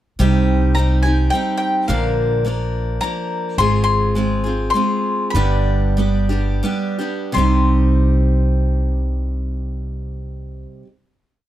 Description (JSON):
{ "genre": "acoustic folk duo or small band", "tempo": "81-106 BPM", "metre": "3/4", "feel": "straight", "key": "C minor", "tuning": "A4 = 439 Hz", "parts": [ { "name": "picked steel-string acoustic guitar", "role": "accompaniment", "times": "0.2-10.9 s", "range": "G2 to Bb4", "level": "-20 LUFS", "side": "right 1 dB", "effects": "none" }, { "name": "upright bass", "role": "bass", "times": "0.2-10.6 s", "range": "G1 to C2", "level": "-18 LUFS", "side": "equal", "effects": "none" }, { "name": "bowl-back mandolin", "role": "melody", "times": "0.7-10.6 s", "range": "F5 to C6", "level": "-21 LUFS", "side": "left 3 dB", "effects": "none" } ], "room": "light reverb", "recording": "none", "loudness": "-16 LUFS", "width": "side -13 dB against mid", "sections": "0.2-7.4 A section; 7.4-11.5 final chord", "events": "slowing down 3.6-7.4", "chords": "0.2 Cm; 1.9 Bb; 3.6 Fm/Ab; 5.3 G; 7.4 Cm" }